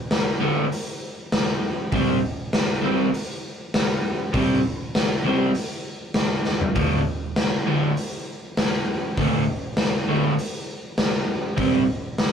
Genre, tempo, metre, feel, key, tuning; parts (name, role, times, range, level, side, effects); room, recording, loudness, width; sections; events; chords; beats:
garage rock duo or trio; 99 BPM; 4/4; straight; A4 = 441 Hz
raw garage drum kit; drums; 0.1-12.3 s; hi-hat, kick drum, snare drum, toms; -23 LUFS; equal
crunchy overdriven guitar; riff; 0.4-11.8 s; D2 to C4; -20 LUFS; right 1 dB
moderate booth ambience, RT60 0.2 s; rough rehearsal-room recording; -20 LUFS; side -7 dB against mid
0.0-12.3 A section
drum fill 6.5-6.8
0.0 D5; 1.9 C5; 6.8 D5; 11.6 C5
0.12 0.72 1.33 | 1.93 2.54 3.14 3.75 | 4.35 4.95 5.56 6.16 | 6.76 7.37 7.97 8.57 | 9.18 9.78 10.38 10.98 | 11.58 12.18